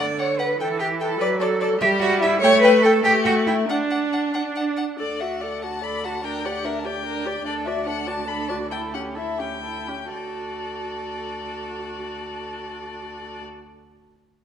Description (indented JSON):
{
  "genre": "quick classical-period movement for string quartet",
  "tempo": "80-100 BPM (dotted quarters)",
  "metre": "6/8",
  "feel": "rubato",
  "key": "D major",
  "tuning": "A4 = 441 Hz",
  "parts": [
    { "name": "rich violin", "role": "melody", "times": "0.0-13.4 s", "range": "D4 to B5", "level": "-26 LUFS", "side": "left 6 dB", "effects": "none" },
    { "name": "rich violin", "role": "second line", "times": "0.0-13.4 s", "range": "G4 to G5", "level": "-30 LUFS", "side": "left 2 dB", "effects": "none" },
    { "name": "rich viola", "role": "accompaniment", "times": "0.0-13.4 s", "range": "D3 to A4", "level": "-26 LUFS", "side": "right 1 dB", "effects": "none" },
    { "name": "clear cello", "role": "bass", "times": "0.0-13.4 s", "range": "D2 to D5", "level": "-24 LUFS", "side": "right 4 dB", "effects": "none" }
  ],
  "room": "wet recital hall reverb, RT60 1.5 s",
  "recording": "none",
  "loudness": "-20 LUFS",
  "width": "side -8 dB against mid",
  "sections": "0.0-5.0 A section; 5.0-10.1 B section; 10.1-13.0 C section",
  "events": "slowing down 6.8-10.1",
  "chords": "0.0 D; 0.6 A5/E; 1.2 D/F#; 1.8 Em/G; 2.4 A7; 3.7 D; 6.2 Gm/D; 7.5 D; 8.7 A7/D; 10.1 D"
}